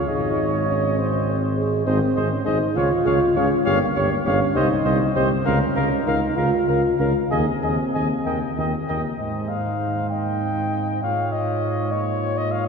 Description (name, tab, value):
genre	classical, brass quintet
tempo	66 BPM (dotted quarters)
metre	6/8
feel	rubato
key	Ab major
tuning	A4 = 443 Hz
part	mellow cornet	melody	0.0-12.7 s	Db5 to Ab5	-27 LUFS	left 5 dB	none
part	warm flugelhorn	second line	0.0-12.7 s	Bb4 to Eb5	-27 LUFS	right 3 dB	none
part	clear French horn	accompaniment	0.0-12.7 s	Eb4 to Bb4	-30 LUFS	left 4 dB	none
part	dark euphonium	accompaniment	0.0-12.7 s	Ab3 to Ab4	-24 LUFS	equal	none
part	warm tuba	bass	0.0-12.7 s	G1 to Ab2	-24 LUFS	right 2 dB	none
room	wet cathedral reverb, RT60 4.8 s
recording	heard from further back in the room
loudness	-19 LUFS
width	side -5 dB against mid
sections	0.0-9.2 A section; 9.2-12.7 B section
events	none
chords	0.1 Ab; 2.8 Db; 3.7 Gm7b5; 4.6 Cm; 5.5 Bbm/Db; 7.3 Ab/Eb; 8.3 Eb; 9.2 Ab; 11.0 Bbm7/Ab